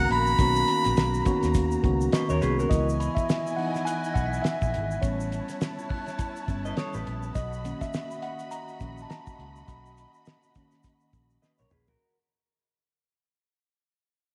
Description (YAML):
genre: lush 1970s-style soul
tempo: 103 BPM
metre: 4/4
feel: swing 58% on 16ths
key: B major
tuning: A4 = 440 Hz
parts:
  - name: clear harmonica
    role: melody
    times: 0.0-1.5 s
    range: F#5 to B5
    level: -28 LUFS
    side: equal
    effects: none
  - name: warm studio violin section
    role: second line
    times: 0.0-12.0 s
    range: A#3 to B5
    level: -40 LUFS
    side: equal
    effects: tape echo
  - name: mellow tine electric piano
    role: accompaniment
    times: 0.0-12.0 s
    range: D#3 to B5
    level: -32 LUFS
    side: equal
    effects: none
  - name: vintage muted fingered electric bass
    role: bass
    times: 0.0-11.9 s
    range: G1 to D#2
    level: -32 LUFS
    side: equal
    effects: none
  - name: cloth-damped thuddy drum kit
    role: drums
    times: 0.1-12.0 s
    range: hi-hat, kick drum, snare drum, toms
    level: -30 LUFS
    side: equal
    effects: none
  - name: egg shaker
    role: percussion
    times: 0.3-12.0 s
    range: none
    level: -52 LUFS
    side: equal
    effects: none
  - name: electric guitar through a small old amp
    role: riff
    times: 2.1-2.9, 6.7-7.3, 11.4-12.2 s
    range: F#4 to D#5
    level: -36 LUFS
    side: equal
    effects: none
  - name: glockenspiel with soft plastic mallets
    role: texture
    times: 2.1-7.6 s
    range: B5 to B6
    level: -44 LUFS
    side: equal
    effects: none
room: moderate echo chamber reverb, RT60 2.6 s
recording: none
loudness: -27 LUFS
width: mono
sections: 0.0-2.7 A section; 2.7-12.0 B section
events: fade-out 2.7-12.0; tine electric piano solo 2.7-12.0; drum fill 11.4-12.0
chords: 0.0 Bmaj9; 2.7 C#m9; 5.0 A9; 7.4 Bmaj9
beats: | 0.39 0.97 1.55 2.13 | 2.71 3.29 3.87 4.45 | 5.03 5.61 6.19 6.77 | 7.35 7.93 8.52 9.10 | 9.68 10.26 10.84 11.42